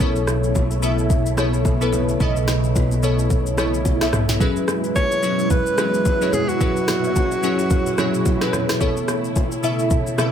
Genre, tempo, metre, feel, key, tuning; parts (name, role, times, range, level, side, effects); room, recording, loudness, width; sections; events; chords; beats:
amapiano; 109 BPM; 4/4; swing 58% on 16ths; A4 = 440 Hz
glassy digital keys; accompaniment; 0.0-10.3 s; B2 to E5; -22 LUFS; left 1 dB; chorus
string machine, cellos; sustained chords; 0.0-10.3 s; F#2 to E4; -27 LUFS; right 1 dB; phaser, ensemble chorus
fingered electric bass; bass; 0.0-4.4 s; B1; -22 LUFS; equal
smooth R&B drum kit; drums; 0.0-10.3 s; kick drum, rim click, shaker, snare drum, toms; -22 LUFS; equal
congas and bongos; percussion; 0.0-10.3 s; -31 LUFS; right 1 dB
warm alto saxophone; melody; 5.0-8.5 s; F#4 to C#5; -23 LUFS; right 1 dB; digital delay
light reverb; -17 LUFS; side -9 dB against mid
0.0-10.3 A section
0.0 B9sus4; 4.4 F#9sus4; 8.8 B9sus4
| 0.00 0.55 1.10 1.65 | 2.20 2.75 3.31 3.85 | 4.41 4.96 5.51 6.06 | 6.61 7.16 7.71 8.26 | 8.81 9.36 9.91